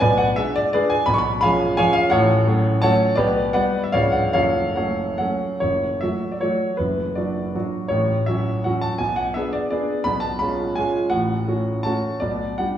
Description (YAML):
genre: classical, romantic triple-time dance for piano with dotted rhythms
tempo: 135-183 BPM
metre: 3/4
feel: rubato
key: F# minor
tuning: A4 = 440 Hz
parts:
  - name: warm concert grand piano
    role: solo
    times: 0.0-12.8 s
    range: C#1 to C#6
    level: -18 LUFS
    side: equal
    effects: none
room: wet recital hall reverb, RT60 1.6 s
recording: heard from further back in the room, small room ambience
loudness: -18 LUFS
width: side -10 dB against mid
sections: 0.0-5.6 A section; 5.6-12.8 A section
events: none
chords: 0.0 G#dim/B; 1.1 C#7/B; 2.1 F#m/A; 3.2 G/B; 3.9 C#7b9; 4.3 F#m; 6.8 Bm/F#; 7.9 F#m/A; 9.0 G#dim/B; 10.1 C#7/B; 11.1 F#m/A; 12.2 G/B